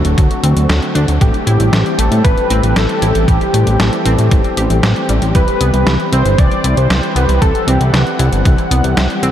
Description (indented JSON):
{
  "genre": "synthwave",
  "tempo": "116 BPM",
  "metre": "4/4",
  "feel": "straight",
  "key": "unclear",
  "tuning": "A4 = 441 Hz",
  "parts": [
    { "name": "wide unison lead", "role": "melody", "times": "0.0-8.2 s", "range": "F#4 to D5", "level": "-19 LUFS", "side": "equal", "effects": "wide subtle chorus, diffuse ambient delay" },
    { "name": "lush unison pad", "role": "sustained chords", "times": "0.0-9.3 s", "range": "D3 to F#5", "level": "-19 LUFS", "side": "left 1 dB", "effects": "chorus, sidechain pumping" },
    { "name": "analog pluck", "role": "arpeggios", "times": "0.0-9.3 s", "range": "E3 to G4", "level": "-22 LUFS", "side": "equal", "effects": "chorus, analog delay" },
    { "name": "fat analog bass", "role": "bass", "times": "0.0-9.3 s", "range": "D1 to A2", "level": "-13 LUFS", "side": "equal", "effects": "sidechain pumping" },
    { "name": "detuned 8-bit digital drum machine", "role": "drums", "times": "0.0-9.3 s", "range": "hi-hat, snare drum", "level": "-20 LUFS", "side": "equal", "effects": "overdrive" },
    { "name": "electronic kick drum", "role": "drums", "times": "0.2-8.6 s", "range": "none", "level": "-12 LUFS", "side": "equal", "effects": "overdrive" }
  ],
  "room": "moderate huge ambient reverb, RT60 8.2 s",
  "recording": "dreamy mix soaked in reverb",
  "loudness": "-10 LUFS",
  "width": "side -10 dB against mid",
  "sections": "0.0-9.3 A section",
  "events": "none",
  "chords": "0.0 D7; 1.2 Am7; 5.3 Cmaj7"
}